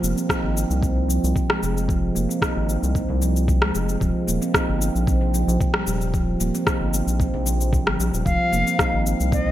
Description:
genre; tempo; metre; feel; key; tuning
organic downtempo; 113 BPM; 4/4; straight; F minor; A4 = 440 Hz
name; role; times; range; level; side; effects
handpan; arpeggios; 0.0-9.5 s; C3 to Eb4; -24 LUFS; right 2 dB; low-pass filter, ping-pong delay
round analog bass; bass; 0.0-9.5 s; Eb1 to C2; -23 LUFS; equal; none
electronic cabasa and rim click; drums; 0.0-9.4 s; none; -26 LUFS; left 1 dB; overdrive, studio reverb
electronic kick drum; drums; 0.3-9.4 s; none; -24 LUFS; equal; studio reverb
reedy Native American-style cedar flute; melody; 8.3-9.5 s; Eb5 to F5; -23 LUFS; left 2 dB; ping-pong delay
room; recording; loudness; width
moderate plate reverb, RT60 1.9 s, studio ambience; bright 1980s-style digital production; -19 LUFS; side -13 dB against mid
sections
0.0-9.5 A section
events
filter sweep on handpan 0.0-9.5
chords
0.0 Fm7; 4.0 Eb69; 8.3 Fm7

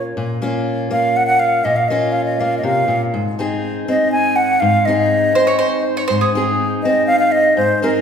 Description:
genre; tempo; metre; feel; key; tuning
acoustic folk duo or small band; 122 BPM; 3/4; straight; unclear; A4 = 440 Hz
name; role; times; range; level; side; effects
wooden flute; melody; 0.0-8.0 s; Bb4 to Ab5; -15 LUFS; equal; none
fingerpicked steel-string acoustic guitar; accompaniment; 0.0-8.0 s; Ab2 to Ab4; -19 LUFS; left 2 dB; none
bowl-back mandolin; second line; 5.4-6.7 s; Ab4 to Db5; -18 LUFS; right 3 dB; none
room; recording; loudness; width
wet recital hall reverb, RT60 1.6 s; recorded in a church or concert hall; -14 LUFS; side -7 dB against mid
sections
0.0-8.0 A section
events
none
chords
0.0 Bbm; 3.1 Ab

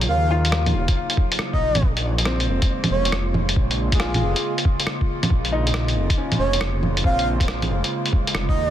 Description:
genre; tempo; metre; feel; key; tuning
future garage; 138 BPM; 4/4; swing 66% on 16ths; Bb minor; A4 = 440 Hz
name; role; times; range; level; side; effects
bright upright piano; accompaniment; 0.0-8.7 s; C4 to F4; -30 LUFS; left 2 dB; sidechain pumping, tape echo
warbly tape-like pad; sustained chords; 0.0-8.7 s; Db3 to F4; -29 LUFS; right 1 dB; chorus, built-in reverb, sidechain pumping
swelling detuned saw bass; bass; 0.0-8.7 s; Eb1 to Eb2; -23 LUFS; equal; sidechain pumping
lo-fi sampler-style drum kit; drums; 0.0-8.5 s; bongos, hi-hat, rim click; -24 LUFS; equal; soft clipping on snare
breathy flute-like synth lead; melody; 0.1-8.7 s; Ab4 to F5; -27 LUFS; right 1 dB; analog chorus, cassette tape, tape echo
electronic kick drum; drums; 0.9-8.5 s; none; -20 LUFS; equal; none
room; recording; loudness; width
digital ambience; dense, heavily limited modern master; -18 LUFS; side -11 dB against mid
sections
0.0-1.8 A section; 1.8-8.7 B section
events
none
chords
0.0 Ebm7; 1.8 Bbm7

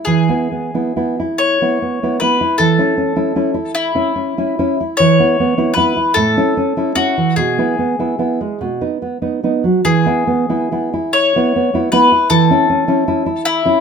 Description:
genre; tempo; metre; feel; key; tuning
romantic duo for mandolin and classical guitar; 49 BPM (dotted quarters); 6/8; uneven beats, rubato; E major; A4 = 440 Hz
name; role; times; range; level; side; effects
mandolin; melody; 0.0-13.8 s; E4 to C#5; -16 LUFS; left 4 dB; none
nylon-string guitar; accompaniment; 0.0-13.8 s; A2 to E4; -15 LUFS; right 2 dB; none
room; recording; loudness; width
light reverb; minimal, uncompressed stereo recording; -13 LUFS; side -6 dB against mid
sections
0.1-13.8 A section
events
none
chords
0.1 E; 2.6 A/E; 5.0 E5; 6.2 A; 7.4 E/B; 8.6 B; 9.9 E; 12.3 A/E

